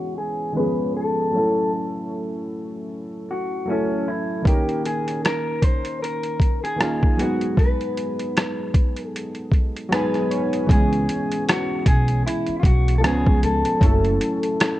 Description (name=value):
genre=lo-fi hip hop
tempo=77 BPM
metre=4/4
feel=swing 57% on 16ths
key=C# minor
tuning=A4 = 443 Hz
part: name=electric guitar at the edge of break-up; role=melody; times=0.0-14.8 s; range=C#4 to B#4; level=-26 LUFS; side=left 2 dB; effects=low-pass filter
part: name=warbly lo-fi synth keys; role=accompaniment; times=0.0-14.8 s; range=D#3 to G#5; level=-25 LUFS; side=right 1 dB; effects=chorus, low-pass filter
part: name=lo-fi sampler-style drum kit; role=drums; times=4.5-14.8 s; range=hi-hat, kick drum, rim click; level=-19 LUFS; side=equal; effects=overdrive
part: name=upright bass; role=bass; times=10.7-14.2 s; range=F#1 to C#2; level=-21 LUFS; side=equal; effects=none
room=light reverb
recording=cassette tape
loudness=-19 LUFS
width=side -15 dB against mid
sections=0.0-10.7 A section; 10.7-14.8 B section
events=filter sweep 0.0-10.7; synth keys fill 9.5-10.7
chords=0.0 C#m7; 0.6 C#7; 1.3 F#m7; 4.5 D#5; 7.2 G#m7; 10.7 C#m7; 13.0 C#7; 13.8 F#m7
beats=0.56 | 1.34 2.12 2.90 3.68 | 4.46 5.24 6.01 6.79 | 7.57 8.35 9.13 9.91 | 10.69 11.47 12.25 13.03 | 13.81 14.59